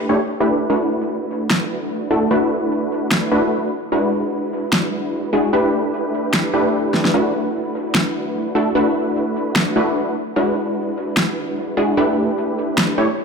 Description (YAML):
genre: future bass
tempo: 149 BPM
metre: 4/4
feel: swing 55% on 16ths, half-time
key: D major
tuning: A4 = 440 Hz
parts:
  - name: supersaw stab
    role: riff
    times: 0.0-13.1 s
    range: G#3 to C#5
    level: -18 LUFS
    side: equal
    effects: low-pass filter, dub echo
  - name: electronic finger snaps and snare drum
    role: drums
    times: 1.5-12.9 s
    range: none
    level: -20 LUFS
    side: equal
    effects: overdrive
room: wet lush hall reverb, RT60 1.9 s, digital ambience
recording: none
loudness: -17 LUFS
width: side -5 dB against mid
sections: 0.0-13.2 A section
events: drum fill 6.9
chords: 0.0 A9sus4; 0.7 D69; 3.7 E9; 5.5 A9sus4; 7.1 D69; 10.2 E9; 12.0 A9sus4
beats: 0.29 | 0.70 1.10 1.50 1.91 | 2.31 2.71 3.11 3.52 | 3.92 4.32 4.72 5.13 | 5.53 5.93 6.33 6.74 | 7.14 7.54 7.95 8.35 | 8.75 9.15 9.56 9.96 | 10.36 10.77 11.17 11.57 | 11.97 12.38 12.78